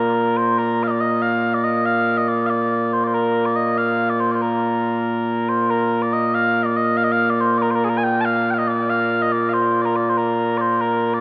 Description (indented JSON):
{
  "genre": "scottish traditional, Scottish pipe music",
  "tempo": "94 BPM (dotted quarters)",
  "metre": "6/8",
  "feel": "straight",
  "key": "Bb major",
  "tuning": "A4 = 439 Hz",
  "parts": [
    { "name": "mellow small bagpipes", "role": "solo", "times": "0.0-11.2 s", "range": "Bb2 to A5", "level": "-20 LUFS", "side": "equal", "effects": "none" }
  ],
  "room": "wet lush hall reverb, RT60 2.9 s",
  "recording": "rough home demo mix",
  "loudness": "-20 LUFS",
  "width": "mono",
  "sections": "0.0-5.7 A section; 5.7-11.2 A section",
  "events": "none",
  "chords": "none"
}